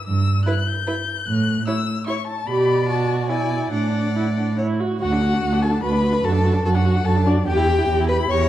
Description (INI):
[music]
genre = quick classical-period movement for string quartet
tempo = 147 BPM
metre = 3/4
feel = rubato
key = D major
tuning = A4 = 439 Hz
[part]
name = rich violin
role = melody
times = 0.0-8.5 s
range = D5 to G6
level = -26 LUFS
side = left 6 dB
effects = none
[part]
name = rich cello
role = bass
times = 0.1-8.5 s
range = D2 to B2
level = -20 LUFS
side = right 2 dB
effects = none
[part]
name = rich violin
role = second line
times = 0.5-8.5 s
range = D4 to D5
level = -25 LUFS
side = left 2 dB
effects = none
[part]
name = rich viola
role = accompaniment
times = 0.5-8.5 s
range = D4 to G4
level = -24 LUFS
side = right 2 dB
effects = none
[sound]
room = wet recital hall reverb, RT60 1.6 s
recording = dark, warm production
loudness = -18 LUFS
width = side -12 dB against mid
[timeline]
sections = 0.0-5.0 A section; 5.0-8.5 B section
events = none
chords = 0.0 Em/G; 1.3 A; 2.5 G/B; 3.3 E7/B; 3.7 D/A; 4.6 A5; 5.0 D; 6.2 D/F#; 7.5 Em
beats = | 0.07 0.47 0.87 | 1.28 1.68 2.08 | 2.48 2.89 3.30 | 3.73 4.16 4.58 | 5.00 5.41 5.83 | 6.24 6.65 7.06 | 7.48 7.89 8.29